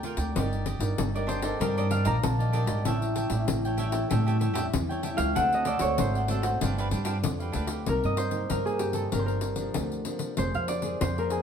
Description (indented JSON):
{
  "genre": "samba and choro",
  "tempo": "96 BPM",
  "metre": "4/4",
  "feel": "straight",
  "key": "G minor, C minor from 7.9 s",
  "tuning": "A4 = 440 Hz",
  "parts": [
    { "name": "cavaquinho", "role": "accompaniment", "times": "0.0-7.9 s", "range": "D4 to G5", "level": "-34 LUFS", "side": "right 3 dB", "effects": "none" },
    { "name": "nylon-string guitar", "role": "accompaniment", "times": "0.0-11.4 s", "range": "G2 to B4", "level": "-34 LUFS", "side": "left 2 dB", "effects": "none" },
    { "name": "upright bass", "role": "bass", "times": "0.0-11.4 s", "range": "F1 to A2", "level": "-29 LUFS", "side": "right 1 dB", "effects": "none" },
    { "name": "pandeiro", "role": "percussion", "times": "0.0-11.4 s", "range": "none", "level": "-32 LUFS", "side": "left 4 dB", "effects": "none" },
    { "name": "Celtic harp", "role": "melody", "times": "1.2-11.4 s", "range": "G4 to Bb5", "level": "-30 LUFS", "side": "equal", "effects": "tape echo" }
  ],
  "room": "wet studio reverb, RT60 0.7 s",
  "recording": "heard from further back in the room",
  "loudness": "-25 LUFS",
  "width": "side -7 dB against mid",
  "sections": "0.0-7.9 A section; 7.9-11.4 B section",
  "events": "harp solo 0.0-7.9",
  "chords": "0.4 Ebmaj7/G; 2.9 A7; 5.4 D7; 6.6 G7; 7.9 Cm7; 9.1 Gm7; 10.4 Bb7/F"
}